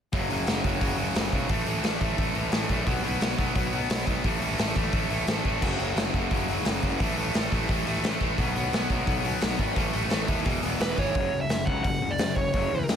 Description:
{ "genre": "punk rock", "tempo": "174 BPM", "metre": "4/4", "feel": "straight", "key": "F# minor", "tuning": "A4 = 440 Hz", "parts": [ { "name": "distorted electric guitar", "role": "riff", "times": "0.1-13.0 s", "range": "E2 to B3", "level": "-30 LUFS", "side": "left 11 dB", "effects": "distortion" }, { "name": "distorted electric guitar", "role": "riff", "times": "0.1-11.2 s", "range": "E2 to B3", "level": "-31 LUFS", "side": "right 19 dB", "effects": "overdrive" }, { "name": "fuzz picked electric bass", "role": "bass", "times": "0.1-13.0 s", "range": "E1 to F#2", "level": "-32 LUFS", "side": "equal", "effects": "overdrive" }, { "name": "raw garage drum kit", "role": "drums", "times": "0.1-13.0 s", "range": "crash cymbal, hi-hat, kick drum, snare drum", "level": "-28 LUFS", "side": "equal", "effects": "none" }, { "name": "dark smooth lead guitar", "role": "melody", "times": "10.8-12.9 s", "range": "B4 to F#5", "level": "-28 LUFS", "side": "right 3 dB", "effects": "overdrive" } ], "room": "little or no reverb", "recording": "none", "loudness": "-24 LUFS", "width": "side -8 dB against mid", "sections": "0.1-11.2 A section; 11.2-13.0 B section", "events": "none", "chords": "0.1 F#5; 1.5 A5; 2.9 B5; 4.2 A5; 5.6 F#5; 7.0 A5; 8.4 B5; 9.8 A5; 10.5 E; 11.2 F#5", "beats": "| 0.14 0.48 0.82 1.16 | 1.50 1.85 2.19 2.53 | 2.87 3.22 3.56 3.90 | 4.25 4.59 4.93 5.28 | 5.62 5.97 6.31 6.66 | 7.00 7.35 7.70 8.04 | 8.39 8.73 9.08 9.42 | 9.77 10.12 10.46 10.81 | 11.16 11.50 11.85 12.20 | 12.54 12.89" }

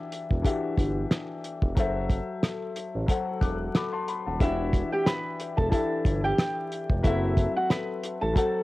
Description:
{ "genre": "hip hop, boom-bap hip-hop", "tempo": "91 BPM", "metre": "4/4", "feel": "swing 56% on 16ths", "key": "E minor", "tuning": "A4 = 443 Hz", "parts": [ { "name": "dark baby grand piano", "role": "accompaniment", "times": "0.0-8.6 s", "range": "E3 to F#6", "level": "-30 LUFS", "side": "left 4 dB", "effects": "cassette tape, high-pass filter, low-pass filter" }, { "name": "cloth-damped thuddy drum kit", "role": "drums", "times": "0.1-8.5 s", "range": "hi-hat, kick drum, rim click, snare drum", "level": "-25 LUFS", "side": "equal", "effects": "vintage 12-bit sampler grit" }, { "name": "smooth synth bass", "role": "bass", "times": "0.3-8.3 s", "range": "D#1 to A1", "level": "-29 LUFS", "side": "equal", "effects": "none" }, { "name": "flamenco guitar", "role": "melody", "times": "4.4-8.6 s", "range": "E4 to B5", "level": "-29 LUFS", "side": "right 1 dB", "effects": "high-pass filter, low-pass filter, cassette tape" } ], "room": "small room reverb", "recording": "home recording on cassette, vinyl crackle", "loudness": "-24 LUFS", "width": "side -18 dB against mid", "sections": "0.0-4.4 A section; 4.4-8.6 B section", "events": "none", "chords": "0.0 Em7; 1.8 F#m7b5; 4.4 Em7; 7.0 F#m7b5", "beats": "0.45 1.11 | 1.77 2.42 3.08 3.74 | 4.40 5.06 5.72 6.38 | 7.04 7.70 8.36" }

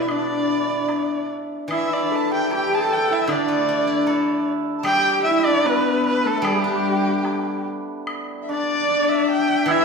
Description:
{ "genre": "chinese traditional, Chinese chamber ensemble", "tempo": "75 BPM", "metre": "2/4", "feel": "rubato", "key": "G gong mode", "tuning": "A4 = 440 Hz", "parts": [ { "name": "rich erhu", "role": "melody", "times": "0.0-9.8 s", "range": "G4 to A5", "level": "-24 LUFS", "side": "right 1 dB", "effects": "none" }, { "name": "hammered dulcimer", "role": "second line", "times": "0.0-9.8 s", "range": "G3 to B4", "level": "-24 LUFS", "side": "right 2 dB", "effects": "none" }, { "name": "mellow dizi", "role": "second line", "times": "0.0-9.8 s", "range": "A4 to A5", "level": "-26 LUFS", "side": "equal", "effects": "none" }, { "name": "rich horsehead fiddle", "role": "second line", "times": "0.0-9.8 s", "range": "G3 to A4", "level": "-25 LUFS", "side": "left 3 dB", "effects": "none" }, { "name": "steel-string zither", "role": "accompaniment", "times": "0.0-9.8 s", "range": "B2 to A4", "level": "-27 LUFS", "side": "left 1 dB", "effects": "none" }, { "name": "woodblock", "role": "percussion", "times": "0.1-9.8 s", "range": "none", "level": "-34 LUFS", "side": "left 1 dB", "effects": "none" } ], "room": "wet recital hall reverb, RT60 1.5 s", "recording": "recorded in a church or concert hall", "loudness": "-18 LUFS", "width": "side -4 dB against mid", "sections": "0.0-8.1 A section; 8.1-9.8 B section", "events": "none", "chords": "none", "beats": "| 0.09 0.89 | 1.70 2.51 | 3.29 4.07 | 4.85 5.65 | 6.45 7.25 | 8.07 8.89 | 9.69" }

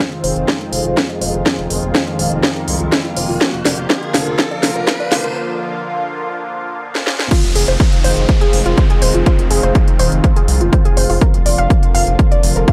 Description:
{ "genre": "melodic techno", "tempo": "123 BPM", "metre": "4/4", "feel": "straight", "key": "F dorian", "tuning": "A4 = 440 Hz", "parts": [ { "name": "lush unison pad", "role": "sustained chords", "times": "0.0-12.7 s", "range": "D3 to F4", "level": "-24 LUFS", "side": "equal", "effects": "chorus, phaser, sidechain pumping" }, { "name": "overtone-sweeping drone", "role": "drone", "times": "0.1-12.7 s", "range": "F2", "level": "-30 LUFS", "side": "equal", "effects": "chorus, built-in reverb, sidechain pumping" }, { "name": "riser and downlifter", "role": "sound effects", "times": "1.3-11.2 s", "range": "none", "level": "-30 LUFS", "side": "equal", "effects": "none" }, { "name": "techno drum kit", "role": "drums", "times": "0.1-12.7 s", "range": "crash cymbal, hi-hat, snare drum", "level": "-21 LUFS", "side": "equal", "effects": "overdrive" }, { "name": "warbly dusty pluck", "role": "arpeggios", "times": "0.2-12.7 s", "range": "F4 to F5", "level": "-23 LUFS", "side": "equal", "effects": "chorus, sidechain pumping, analog delay" }, { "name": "gritty driven synth bass", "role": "bass", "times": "0.2-12.6 s", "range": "Eb1 to C2", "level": "-21 LUFS", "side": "equal", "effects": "sidechain pumping" }, { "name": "electronic kick drum", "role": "drums", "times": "0.5-12.7 s", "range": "none", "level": "-16 LUFS", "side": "equal", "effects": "overdrive, high-pass filter on kick" } ], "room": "little or no reverb", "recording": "dry, gritty hardware recording, high-pass filter", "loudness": "-15 LUFS", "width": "mono", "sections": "0.0-7.3 A section; 7.3-12.7 B section", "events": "build-up 0.0-7.3; drum fill 0.0-5.4, 6.9-7.3; filter sweep on synth arpeggio sound 0.0-7.3; riser 1.3-5.4; break 5.4-7.3; drop 7.3-12.7", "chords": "0.0 Fm7; 3.4 Bb/F; 7.3 Fm7; 11.2 Bb/F", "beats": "0.00 0.48 0.97 | 1.46 1.95 2.43 2.92 | 3.41 3.90 4.39 4.87 | 5.36 5.85 6.34 6.83 | 7.31 7.80 8.29 8.78 | 9.26 9.75 10.24 10.73 | 11.21 11.70 12.19 12.68" }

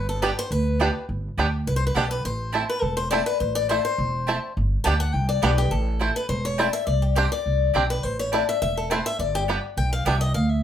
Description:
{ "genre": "bluegrass", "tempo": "207 BPM", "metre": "4/4", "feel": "swing 54% on 8ths", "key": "unclear", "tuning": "A4 = 442 Hz", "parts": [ { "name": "picked swing-style acoustic guitar", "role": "accompaniment", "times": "0.0-10.6 s", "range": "G4 to A5", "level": "-26 LUFS", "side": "left 4 dB", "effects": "none" }, { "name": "upright bass", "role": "bass", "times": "0.0-10.6 s", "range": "E1 to D2", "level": "-24 LUFS", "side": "equal", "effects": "none" }, { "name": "bluegrass banjo", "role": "melody", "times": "0.2-10.1 s", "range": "A3 to G4", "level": "-26 LUFS", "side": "right 3 dB", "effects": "none" }, { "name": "mandolin", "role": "stabs", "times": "0.2-10.2 s", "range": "B3 to A5", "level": "-28 LUFS", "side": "right 4 dB", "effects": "none" } ], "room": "wet studio reverb, RT60 0.5 s", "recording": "band playing live in one room", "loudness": "-21 LUFS", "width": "side -10 dB against mid", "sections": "0.0-6.9 A section; 6.9-10.6 A section", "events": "steel-string acoustic guitar solo 0.0-10.6", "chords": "0.0 G; 2.2 Am; 4.6 G; 5.7 Am; 6.9 Csus2; 8.0 Amadd9; 9.2 G", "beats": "0.23 0.52 0.80 | 1.09 1.38 1.67 1.96 | 2.25 2.54 2.83 3.12 | 3.41 3.69 3.98 4.27 | 4.56 4.85 5.14 5.43 | 5.72 6.01 6.30 6.59 | 6.88 7.17 7.46 7.75 | 8.04 8.33 8.62 8.90 | 9.20 9.48 9.77 10.06 | 10.35" }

